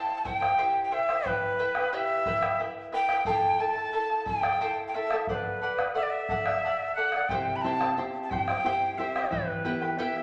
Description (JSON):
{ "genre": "andean folk, Andean ensemble", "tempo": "60 BPM (dotted quarters)", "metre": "6/8", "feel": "straight", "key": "E minor", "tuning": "A4 = 440 Hz", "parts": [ { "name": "breathy bright quena", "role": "melody", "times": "0.0-10.2 s", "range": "B4 to B5", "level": "-30 LUFS", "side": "equal", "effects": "none" }, { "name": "charango", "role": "accompaniment", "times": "0.0-10.2 s", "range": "E4 to A5", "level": "-35 LUFS", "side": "equal", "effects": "none" }, { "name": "bombo", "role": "percussion", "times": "0.1-10.2 s", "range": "none", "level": "-38 LUFS", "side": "equal", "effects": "none" }, { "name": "nylon-string guitar", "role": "accompaniment", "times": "7.3-10.2 s", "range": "G2 to G4", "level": "-37 LUFS", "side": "equal", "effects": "none" } ], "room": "wet large studio reverb, RT60 1.3 s", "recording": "none", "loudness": "-28 LUFS", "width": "mono", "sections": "0.0-10.2 A section", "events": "none", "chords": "0.0 C; 1.3 Em; 3.3 Am; 5.3 D; 7.3 C; 9.3 Em", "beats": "0.25 | 1.25 2.26 | 3.26 4.27 | 5.28 6.28 | 7.29 8.30 | 9.31" }